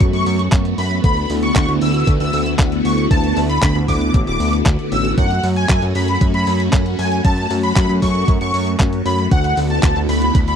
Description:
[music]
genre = italo disco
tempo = 116 BPM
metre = 4/4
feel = straight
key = F# minor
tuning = A4 = 441 Hz
[part]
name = wide unison lead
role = melody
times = 0.0-10.6 s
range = F#5 to E6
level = -22 LUFS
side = equal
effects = ensemble chorus, tape echo
[part]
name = phased string machine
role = sustained chords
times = 0.0-10.6 s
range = D3 to F#4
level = -20 LUFS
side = equal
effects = ensemble chorus, phaser
[part]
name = fat analog bass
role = bass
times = 0.0-10.6 s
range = D1 to F#2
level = -19 LUFS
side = equal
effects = none
[part]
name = clean 12-bit digital drum machine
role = drums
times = 0.0-10.6 s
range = handclaps, hi-hat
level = -25 LUFS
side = equal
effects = none
[part]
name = electronic kick drum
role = drums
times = 0.0-10.5 s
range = none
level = -16 LUFS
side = equal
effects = none
[sound]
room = little or no reverb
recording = dry, close 1970s-style studio recording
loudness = -14 LUFS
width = side -8 dB against mid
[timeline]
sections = 0.0-10.6 A section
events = none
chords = 0.0 F#m; 1.0 D6; 5.2 F#m; 9.3 D6

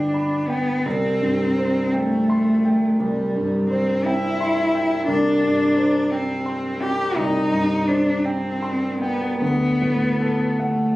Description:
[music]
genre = classical, romantic duo for cello and grand piano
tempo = 50-59 BPM (dotted quarters)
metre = 12/8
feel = rubato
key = unclear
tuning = A4 = 442 Hz
[part]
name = warm cello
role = melody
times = 0.0-11.0 s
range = G3 to G4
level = -20 LUFS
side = left 1 dB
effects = none
[part]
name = clear concert grand piano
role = accompaniment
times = 0.0-11.0 s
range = C2 to C6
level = -23 LUFS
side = right 1 dB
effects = none
[sound]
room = moderate recital hall reverb, RT60 1.5 s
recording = recorded on a phone in the room, club reverb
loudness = -18 LUFS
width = side -18 dB against mid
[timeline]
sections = 0.0-11.0 A section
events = none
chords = 0.0 G; 0.8 C5; 9.4 D

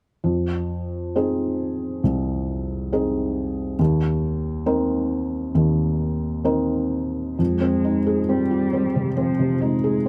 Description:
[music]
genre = neoclassical piano and strings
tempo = 68 BPM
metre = 4/4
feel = rubato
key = unclear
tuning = A4 = 440 Hz
[part]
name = felt-muted upright piano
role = accompaniment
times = 0.2-10.1 s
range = C2 to Bb4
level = -23 LUFS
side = equal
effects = none
[part]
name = muted cello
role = second line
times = 7.4-10.1 s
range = F3 to Ab3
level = -28 LUFS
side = equal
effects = none
[sound]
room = little or no reverb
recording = close, detailed microphones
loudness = -23 LUFS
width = mono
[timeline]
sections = 0.2-7.4 A section; 7.4-10.1 B section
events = none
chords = 0.2 Fm7; 3.8 Cm7/Eb; 7.4 Fm7

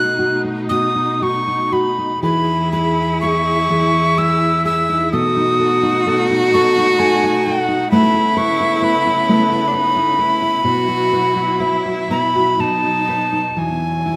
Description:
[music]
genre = celtic folk, Celtic slow air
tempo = 58-66 BPM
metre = 3/4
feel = rubato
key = unclear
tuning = A4 = 439 Hz
[part]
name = breathy mid whistle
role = melody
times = 0.0-14.2 s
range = F#5 to F#6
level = -20 LUFS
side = equal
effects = none
[part]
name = nylon-string guitar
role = accompaniment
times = 0.0-14.2 s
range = B2 to B4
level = -22 LUFS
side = equal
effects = none
[part]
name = rich symphonic string section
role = sustained chords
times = 0.0-14.2 s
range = E2 to G#4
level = -28 LUFS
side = equal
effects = none
[part]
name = clear cello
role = second line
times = 2.2-13.6 s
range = D4 to F#4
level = -22 LUFS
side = equal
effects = none
[sound]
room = moderate concert hall reverb, RT60 1.9 s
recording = none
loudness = -16 LUFS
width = mono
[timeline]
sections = 0.0-13.6 A section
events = none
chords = 0.0 B7; 2.2 Emaj7; 5.1 B7; 7.9 Aadd9; 10.7 Bsus4; 12.6 B; 13.6 Esus2

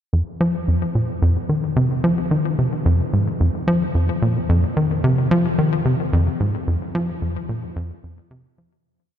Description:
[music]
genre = ambient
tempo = 110 BPM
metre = 4/4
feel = straight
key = F minor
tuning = A4 = 440 Hz
[part]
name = tight sequencer bass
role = solo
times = 0.1-8.7 s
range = F2 to F3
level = -18 LUFS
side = equal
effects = ping-pong delay
[sound]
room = wet huge ambient reverb, RT60 7.7 s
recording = dreamy mix soaked in reverb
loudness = -18 LUFS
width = side -9 dB against mid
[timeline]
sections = 0.1-8.9 A section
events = fade-out 6.0-8.9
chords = none

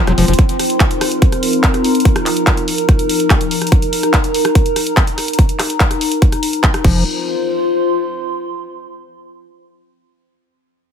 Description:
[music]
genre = psychedelic trance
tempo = 144 BPM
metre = 4/4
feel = straight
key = unclear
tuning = A4 = 436 Hz
[part]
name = overtone-sweeping drone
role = sustained chords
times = 0.0-6.8 s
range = F3 to C4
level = -21 LUFS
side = left 1 dB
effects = chorus, built-in reverb, vintage 12-bit sampler grit, sidechain pumping
[part]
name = overdriven acid bass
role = riff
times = 0.0-0.3, 6.8-7.0 s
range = F3 to Gb3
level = -20 LUFS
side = moving between left 5 dB and right 3 dB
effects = distortion, auto-pan, sidechain pumping, ping-pong delay
[part]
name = warbly tape-like pad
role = texture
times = 0.0-8.7 s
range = Eb4 to C6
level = -19 LUFS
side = left 1 dB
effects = chorus, built-in reverb, sidechain pumping
[part]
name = tight sequencer bass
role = bass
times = 0.1-0.3, 6.8-7.0 s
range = F1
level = -16 LUFS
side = equal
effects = none
[part]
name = big-room dance drum kit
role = drums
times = 0.1-6.9 s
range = crash cymbal, handclaps, hi-hat, rim click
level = -19 LUFS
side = equal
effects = small room ambience
[part]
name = electronic kick drum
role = drums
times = 0.4-6.9 s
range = none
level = -13 LUFS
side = equal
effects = small room ambience
[sound]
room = light reverb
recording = none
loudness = -12 LUFS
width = side -8 dB against mid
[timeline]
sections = 0.0-7.1 A section; 7.1-8.7 B section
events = filter sweep on synth drone 0.0-7.1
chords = 0.4 Eb5; 6.8 F5

